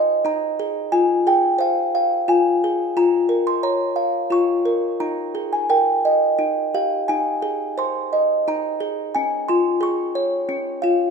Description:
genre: children's music, lullaby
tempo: 89 BPM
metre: 3/4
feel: rubato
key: Ab major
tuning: A4 = 440 Hz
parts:
  - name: music box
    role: solo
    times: 0.0-11.1 s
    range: Db4 to Db6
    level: -18 LUFS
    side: equal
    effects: none
room: moderate concert hall reverb, RT60 2.2 s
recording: minimal, uncompressed stereo recording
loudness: -18 LUFS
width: side -5 dB against mid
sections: 0.0-11.1 A section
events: none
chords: 0.0 Ab; 0.9 Fm; 2.9 Bbm; 5.0 Ab5/Eb; 5.7 Eb; 7.1 Ab; 9.1 Db

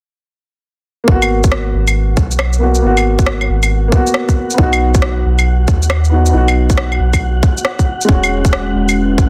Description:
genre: future garage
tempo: 137 BPM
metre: 4/4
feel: swing 66% on 16ths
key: G# minor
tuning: A4 = 441 Hz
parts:
  - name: dark upright piano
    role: accompaniment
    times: 1.0-9.3 s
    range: G#3 to F#4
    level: -20 LUFS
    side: equal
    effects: sidechain pumping, digital delay
  - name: soft dub sub bass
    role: bass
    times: 1.1-9.3 s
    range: E1 to D#2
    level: -17 LUFS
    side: equal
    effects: tube saturation, sidechain pumping
  - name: electronic kick drum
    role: drums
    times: 1.1-9.3 s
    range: none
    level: -16 LUFS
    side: equal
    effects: overdrive, studio reverb
  - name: wind-like tuned noise texture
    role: texture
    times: 1.6-9.3 s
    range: F#4 to F#5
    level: -29 LUFS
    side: equal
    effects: built-in reverb
  - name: electronic shaker, claves and rim click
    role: drums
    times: 1.2-9.3 s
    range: none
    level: -21 LUFS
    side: equal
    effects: overdrive, studio reverb
  - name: warbly tape-like pad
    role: sustained chords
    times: 8.1-9.3 s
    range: G#3 to E5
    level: -19 LUFS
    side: equal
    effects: chorus, built-in reverb, sidechain pumping
room: light reverb, digital ambience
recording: dense, heavily limited modern master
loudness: -13 LUFS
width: mono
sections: 1.1-9.3 A section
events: none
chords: 1.1 G#m7; 4.6 B; 8.1 E6

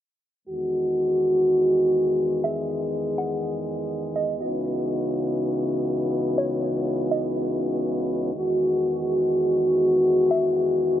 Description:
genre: hip hop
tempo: free time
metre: none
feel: none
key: E major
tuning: A4 = 439 Hz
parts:
  - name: warm brass ensemble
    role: sustained chords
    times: 0.5-11.0 s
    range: C#2 to G#4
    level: -21 LUFS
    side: equal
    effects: none
  - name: hollow square pluck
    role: melody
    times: 2.4-11.0 s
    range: C#5 to F#5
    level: -31 LUFS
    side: right 1 dB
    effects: chorus, digital delay
room: light reverb, studio ambience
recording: low-pass filter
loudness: -21 LUFS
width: side -11 dB against mid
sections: 0.5-11.0 A section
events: none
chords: 0.5 Emaj9; 4.4 C#m11; 8.3 Emaj9

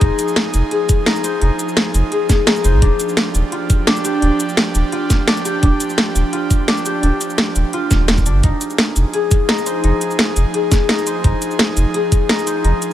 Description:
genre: liquid drum and bass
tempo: 171 BPM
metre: 4/4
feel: straight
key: F dorian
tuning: A4 = 440 Hz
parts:
  - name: airy breathy pad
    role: sustained chords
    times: 0.0-12.9 s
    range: F3 to Ab4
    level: -24 LUFS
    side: right 4 dB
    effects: chorus, sidechain pumping
  - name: concert harp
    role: arpeggios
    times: 0.0-12.9 s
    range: D4 to C5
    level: -20 LUFS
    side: left 4 dB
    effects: dub echo
  - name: warm sub bass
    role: bass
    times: 0.0-12.7 s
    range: Eb1 to C2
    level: -15 LUFS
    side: equal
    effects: none
  - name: drum and bass drum kit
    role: drums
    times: 0.0-12.9 s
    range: cabasa, hi-hat, snare drum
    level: -18 LUFS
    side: equal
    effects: none
  - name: electronic kick drum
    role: drums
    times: 0.0-12.2 s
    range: none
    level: -14 LUFS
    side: equal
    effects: none
room: little or no reverb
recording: none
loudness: -14 LUFS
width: side -12 dB against mid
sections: 0.0-12.9 A section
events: none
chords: 0.0 Fm7; 2.8 Ebmaj9; 8.4 Fm7

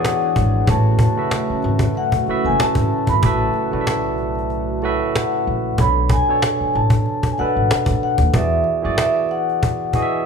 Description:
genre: R&B, neo-soul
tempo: 94 BPM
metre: 4/4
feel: swing 53% on 16ths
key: A major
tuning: A4 = 440 Hz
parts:
  - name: vibraphone with soft mallets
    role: melody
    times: 0.0-10.2 s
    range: E5 to B5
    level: -21 LUFS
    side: left 3 dB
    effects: none
  - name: barky tine electric piano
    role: accompaniment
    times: 0.0-10.3 s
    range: A2 to E5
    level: -23 LUFS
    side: right 5 dB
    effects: none
  - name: chorused pulse-width pad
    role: sustained chords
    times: 0.0-5.7 s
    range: E3 to G#4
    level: -27 LUFS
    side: equal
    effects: none
  - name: cajon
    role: drums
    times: 0.0-10.1 s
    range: none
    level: -21 LUFS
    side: equal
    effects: none
  - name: upright bass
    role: bass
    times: 0.4-9.0 s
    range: F#1 to F#2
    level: -21 LUFS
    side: equal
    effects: none
room: moderate large studio reverb, RT60 1.2 s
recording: band playing live in one room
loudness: -16 LUFS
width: side -6 dB against mid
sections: 0.0-5.8 A section; 5.8-10.3 B section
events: kick muted 4.5-5.8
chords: 0.0 E7; 0.7 A6; 5.8 Bm7; 8.3 E9

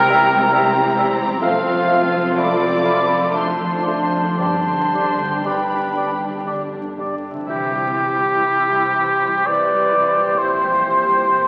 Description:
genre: classical, slow romantic movement for symphony orchestra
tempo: 60 BPM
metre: 3/4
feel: uneven beats, rubato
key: C major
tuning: A4 = 441 Hz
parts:
  - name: warm symphonic violin section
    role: melody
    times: 0.0-11.5 s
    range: E5 to D6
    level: -29 LUFS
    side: equal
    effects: none
  - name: clear symphonic violin section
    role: second line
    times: 0.0-11.5 s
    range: D4 to A4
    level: -32 LUFS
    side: equal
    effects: none
  - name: mellow hollow silver concert flute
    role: second line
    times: 0.0-11.5 s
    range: E4 to B5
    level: -26 LUFS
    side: equal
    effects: none
  - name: rich symphonic viola section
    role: accompaniment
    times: 0.0-11.5 s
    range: D3 to D4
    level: -28 LUFS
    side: equal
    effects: none
  - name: mellow French horn section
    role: sustained chords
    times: 0.0-11.5 s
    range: E3 to G4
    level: -34 LUFS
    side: equal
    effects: none
  - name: concert harp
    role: arpeggios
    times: 0.0-11.5 s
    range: F2 to D5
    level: -31 LUFS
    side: equal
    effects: none
  - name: warm trumpet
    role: stabs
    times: 0.0-11.5 s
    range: F4 to D5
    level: -26 LUFS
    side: equal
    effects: none
  - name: rich symphonic cello section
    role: bass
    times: 0.0-11.5 s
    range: F2 to C3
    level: -35 LUFS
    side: equal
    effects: none
  - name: warm symphonic double bass section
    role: bass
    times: 0.0-11.5 s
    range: F1 to C2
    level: -41 LUFS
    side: equal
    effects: none
  - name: clear oboe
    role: second line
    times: 0.1-11.5 s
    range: G4 to F5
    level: -22 LUFS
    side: equal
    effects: none
  - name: mellow bassoon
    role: accompaniment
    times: 0.1-7.1 s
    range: G3 to A3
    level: -32 LUFS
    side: equal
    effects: none
room: wet scoring stage reverb, RT60 1.6 s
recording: very old 78 rpm record, vinyl crackle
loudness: -18 LUFS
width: mono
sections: 0.0-7.5 A section; 7.5-11.5 B section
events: none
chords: 0.0 C; 1.4 F; 4.4 G; 7.5 C; 10.4 C7/Bb

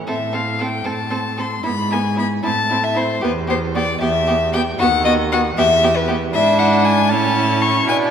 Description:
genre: quick classical-period movement for string quartet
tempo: 77 BPM (dotted quarters)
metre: 6/8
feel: rubato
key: A minor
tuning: A4 = 436 Hz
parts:
  - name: warm violin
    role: melody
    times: 0.1-8.0 s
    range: B4 to C#6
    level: -18 LUFS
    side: left 4 dB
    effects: none
  - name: warm violin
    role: second line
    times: 0.1-8.1 s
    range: E4 to A4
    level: -23 LUFS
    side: right 1 dB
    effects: none
  - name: rich viola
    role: accompaniment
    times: 0.1-8.1 s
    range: B3 to D4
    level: -23 LUFS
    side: right 4 dB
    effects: none
  - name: warm cello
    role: bass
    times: 0.1-8.1 s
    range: D#2 to B2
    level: -22 LUFS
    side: right 3 dB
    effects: none
room: wet scoring stage reverb, RT60 1.8 s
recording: none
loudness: -15 LUFS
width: side -8 dB against mid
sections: 0.1-8.1 A section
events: none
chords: 0.1 Am; 1.7 E/G#; 2.4 Am; 3.2 Em; 4.8 B/D#; 5.6 Em; 6.3 E7/G#; 7.1 A

